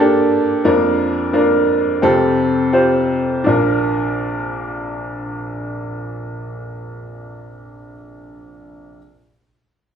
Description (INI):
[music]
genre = pop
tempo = 80-91 BPM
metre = 4/4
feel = straight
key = Bb major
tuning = A4 = 440 Hz
[part]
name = warm upright piano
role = solo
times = 0.0-9.0 s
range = Bb1 to C5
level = -16 LUFS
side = equal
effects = none
[sound]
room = wet large studio reverb, RT60 0.8 s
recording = band playing live in one room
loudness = -15 LUFS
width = side -8 dB against mid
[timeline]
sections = 0.0-3.5 A section; 3.5-6.5 B section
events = slowing down 0.0-3.5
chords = 0.0 Gmadd9; 0.6 Bb/F; 2.0 Fadd9; 3.5 Bb